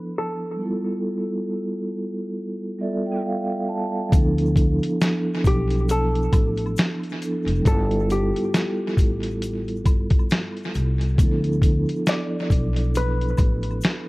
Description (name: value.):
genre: lo-fi hip hop.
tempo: 68 BPM.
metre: 4/4.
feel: swing 56% on 16ths.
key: D dorian.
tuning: A4 = 440 Hz.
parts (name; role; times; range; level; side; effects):
hollow-body jazz guitar; melody; 0.0-14.1 s; G4 to D5; -29 LUFS; left 1 dB; low-pass filter, tape echo.
vibraphone with soft mallets; accompaniment; 0.0-14.1 s; F3 to A5; -25 LUFS; right 1 dB; low-pass filter.
upright bass; bass; 4.1-13.8 s; F1 to D2; -24 LUFS; equal; none.
lo-fi sampler-style drum kit; drums; 4.1-14.1 s; hi-hat, kick drum, snare drum; -20 LUFS; equal; none.
egg shaker and woodblock; percussion; 4.1-14.1 s; none; -43 LUFS; left 3 dB; tape echo.
room: small room ambience.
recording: echo-heavy mix, cassette tape.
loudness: -20 LUFS.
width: side -21 dB against mid.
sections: 0.0-4.1 A section; 4.1-14.1 B section.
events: filter sweep 0.0-4.1; vibraphone fill 2.4-4.1.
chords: 0.0 Dm69; 0.6 G13; 4.1 Dm69; 7.7 G13; 11.2 Dm69.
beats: | 0.59 1.48 2.36 3.24 | 4.12 5.01 5.89 6.77 | 7.65 8.54 9.42 10.30 | 11.18 12.06 12.95 13.83.